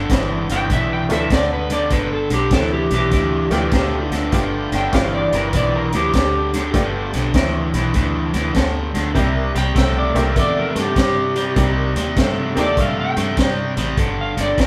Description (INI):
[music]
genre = electric blues shuffle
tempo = 99 BPM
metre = 4/4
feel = swing 66% on 8ths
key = G mixolydian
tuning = A4 = 440 Hz
[part]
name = overdriven semi-hollow guitar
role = riff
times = 0.0-14.7 s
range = G2 to A3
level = -24 LUFS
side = equal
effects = none
[part]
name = fingered electric bass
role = bass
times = 0.0-14.7 s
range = G1 to G2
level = -26 LUFS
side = equal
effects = none
[part]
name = crunchy breakbeat drum kit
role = drums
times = 0.1-14.7 s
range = hi-hat, kick drum, snare drum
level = -24 LUFS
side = equal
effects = none
[part]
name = electric slide guitar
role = second line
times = 0.5-14.7 s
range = G4 to G5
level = -24 LUFS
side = equal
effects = none
[part]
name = honky-tonk upright piano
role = accompaniment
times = 1.1-12.8 s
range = A3 to A4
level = -27 LUFS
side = equal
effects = none
[sound]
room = moderate studio reverb, RT60 0.7 s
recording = band playing live in one room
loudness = -18 LUFS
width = mono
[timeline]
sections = 0.0-14.7 A section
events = electric slide guitar solo 0.0-14.7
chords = 0.0 G7; 9.2 C7; 11.6 Cm7; 14.0 G7(no3)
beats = 0.10 0.70 1.31 | 1.91 2.52 3.12 3.73 | 4.33 4.93 5.54 6.14 | 6.74 7.35 7.95 8.55 | 9.16 9.76 10.36 10.96 | 11.57 12.17 12.77 13.37 | 13.98 14.58